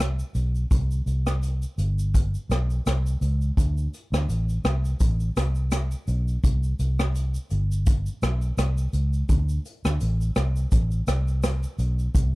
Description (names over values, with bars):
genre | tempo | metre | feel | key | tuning
indie pop, bedroom pop | 84 BPM | 4/4 | swing 55% on 16ths | unclear | A4 = 441 Hz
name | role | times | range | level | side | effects
vintage muted fingered electric bass | bass | 0.0-12.3 s | G1 to D2 | -23 LUFS | equal | none
unplugged drum kit | drums | 0.0-12.3 s | hi-hat, kick drum, rim click, shaker | -24 LUFS | equal | none
room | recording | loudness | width
little or no reverb | none | -22 LUFS | side -20 dB against mid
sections
0.0-12.3 A section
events
none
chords
none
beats
0.00 | 0.71 1.43 2.14 2.86 | 3.57 4.29 5.00 5.72 | 6.43 7.15 7.86 8.58 | 9.29 10.00 10.72 11.43 | 12.15